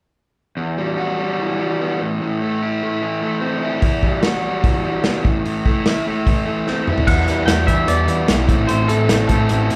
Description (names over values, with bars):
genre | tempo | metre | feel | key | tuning
indie rock | 148 BPM | 4/4 | straight | A dorian | A4 = 435 Hz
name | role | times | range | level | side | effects
raw garage guitar | riff | 0.6-9.8 s | E2 to F#4 | -22 LUFS | equal | overdrive
loose indie drum kit | drums | 3.8-9.8 s | crash cymbal, hi-hat, kick drum, snare drum, toms | -21 LUFS | equal | none
twangy electric guitar | melody | 7.1-9.8 s | A4 to G5 | -24 LUFS | equal | spring reverb
growling picked electric bass | bass | 7.1-9.8 s | A1 to E3 | -21 LUFS | equal | overdrive
room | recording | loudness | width
moderate large studio reverb, RT60 1.1 s | band playing live in one room | -18 LUFS | mono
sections
0.6-7.1 A section; 7.1-9.8 B section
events
drum fill 6.7-7.1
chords
0.6 Emadd9; 2.0 Am; 3.8 Emadd9; 5.2 Am; 7.1 Emadd9; 8.5 Am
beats
| 0.57 0.98 1.39 1.79 | 2.20 2.61 3.02 3.42 | 3.83 4.23 4.64 5.04 | 5.45 5.85 6.26 6.66 | 7.07 7.47 7.88 8.28 | 8.69 9.09 9.49